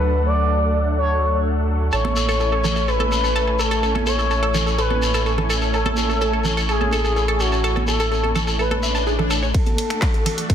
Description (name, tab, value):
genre	progressive house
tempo	126 BPM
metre	4/4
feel	straight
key	A major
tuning	A4 = 442 Hz
part	expressive portamento lead	melody	0.0-10.5 s	F#4 to D5	-23 LUFS	left 1 dB	chorus, sidechain pumping, ping-pong delay
part	filtered supersaw swell	sustained chords	0.0-10.5 s	F#3 to G#5	-26 LUFS	equal	phaser, sidechain pumping
part	round analog bass	bass	0.0-9.5 s	A1 to D2	-22 LUFS	equal	sidechain pumping
part	analog pluck	arpeggios	1.9-10.5 s	G#4 to A5	-25 LUFS	right 1 dB	chorus, sidechain pumping, ping-pong delay
part	shekere	percussion	1.9-9.5 s	none	-28 LUFS	left 3 dB	none
part	congas	percussion	2.0-10.4 s	none	-28 LUFS	right 5 dB	sidechain pumping on perc
part	swell and riser	sound effects	8.8-10.5 s	none	-30 LUFS	left 3 dB	none
part	big-room dance drum kit	drums	9.5-10.5 s	finger snaps, handclaps, hi-hat	-26 LUFS	equal	small room ambience
part	dusty soul sampler-style drum kit	drums	9.5-10.5 s	ride cymbal, snare drum	-34 LUFS	right 6 dB	sidechain pumping on cymbals, high-pass filter on cymbals, small room ambience, high-pass filter on snare
part	electronic kick drum	drums	9.5-10.5 s	none	-18 LUFS	equal	small room ambience
room	light reverb, digital ambience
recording	dense, heavily limited modern master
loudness	-17 LUFS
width	side -9 dB against mid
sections	0.0-9.5 A section; 9.5-10.5 B section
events	swell 8.8-9.5; build-up 9.5-10.5; filter sweep on synth pluck 9.5-10.5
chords	0.0 D; 1.9 Amaj7; 9.5 D